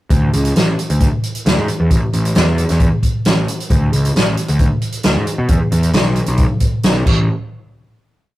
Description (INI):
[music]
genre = indie rock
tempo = 134 BPM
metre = 4/4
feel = straight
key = unclear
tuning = A4 = 441 Hz
[part]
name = fuzz picked electric bass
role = bass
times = 0.1-7.3 s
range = A1 to B2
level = -16 LUFS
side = equal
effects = overdrive
[part]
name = vintage drum kit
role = drums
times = 0.1-7.2 s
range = crash cymbal, hi-hat, kick drum, snare drum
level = -15 LUFS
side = equal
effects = none
[sound]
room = light reverb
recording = rough rehearsal-room recording, warm saturation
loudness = -13 LUFS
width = side -16 dB against mid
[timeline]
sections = 0.1-7.3 pre-chorus; 7.3-8.4 final hit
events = none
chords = none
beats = | 0.11 0.56 1.01 1.46 | 1.91 2.36 2.81 3.26 | 3.71 4.16 4.61 5.05 | 5.50 5.95 6.39 6.84